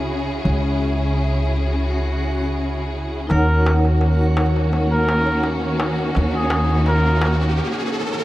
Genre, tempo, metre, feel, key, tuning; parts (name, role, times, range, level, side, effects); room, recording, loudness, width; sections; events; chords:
trip hop; 84 BPM; 4/4; swing 53% on 16ths; A4 = 440 Hz
vibraphone with medium hard mallets; accompaniment; 0.0-8.2 s; C#4 to G#5; -27 LUFS; left 1 dB; tremolo, low-pass filter, tape echo
warm studio string section; sustained chords; 0.0-8.2 s; C#3 to G#4; -24 LUFS; equal
upright bass; bass; 0.0-7.6 s; C#2 to D#2; -19 LUFS; equal
backwards swelling texture; texture; 0.0-7.6 s; F#4; -33 LUFS; equal; built-in reverb
trumpet with cup mute; melody; 3.3-7.4 s; G#4 to A#4; -24 LUFS; equal; vintage 12-bit sampler grit, tape echo
darbuka; percussion; 3.3-7.5 s; -29 LUFS; left 1 dB
riser; sound effects; 5.3-8.2 s; -29 LUFS; right 1 dB
light reverb, small room ambience; vinyl crackle; -17 LUFS; side -16 dB against mid
0.0-8.2 A section
riser 5.3-8.2; break 7.6-8.2
0.0 C#m; 3.3 D#m7